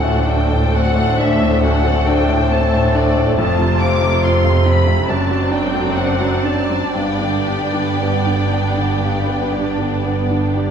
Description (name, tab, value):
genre	classical, romantic movement for piano and orchestra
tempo	57-72 BPM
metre	4/4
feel	rubato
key	unclear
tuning	A4 = 441 Hz
part	clear baby grand piano	melody	0.0-10.7 s	D2 to D4	-18 LUFS	left 2 dB	none
part	warm studio violin section	melody	0.0-10.5 s	D5 to D6	-23 LUFS	left 1 dB	none
part	rich studio violin section	second line	0.0-10.7 s	A3 to D5	-25 LUFS	left 3 dB	none
part	clear studio viola section	accompaniment	0.0-10.7 s	A3 to A4	-25 LUFS	equal	none
part	clear studio cello section	bass	0.0-10.7 s	D2 to G2	-22 LUFS	right 3 dB	none
part	rich studio double bass section	bass	0.0-10.7 s	F1 to D2	-21 LUFS	right 3 dB	none
room	wet concert hall reverb, RT60 1.8 s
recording	minimal, uncompressed stereo recording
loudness	-14 LUFS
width	side -7 dB against mid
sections	0.0-10.7 A section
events	none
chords	0.0 D7; 3.4 F; 5.1 D7/F#; 7.0 G